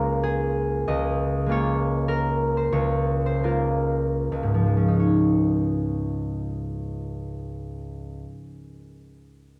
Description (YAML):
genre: classical, solo harp piece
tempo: 69-102 BPM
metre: 3/4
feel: rubato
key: Db major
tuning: A4 = 440 Hz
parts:
  - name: concert harp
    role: solo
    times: 0.0-8.5 s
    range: Db2 to Eb5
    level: -25 LUFS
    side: equal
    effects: none
room: wet recital hall reverb, RT60 1.4 s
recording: dark, warm production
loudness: -24 LUFS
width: mono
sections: 0.0-5.0 A section; 5.0-9.6 B section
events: slowing down 0.0-5.0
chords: 0.0 Db6; 5.0 Dbadd9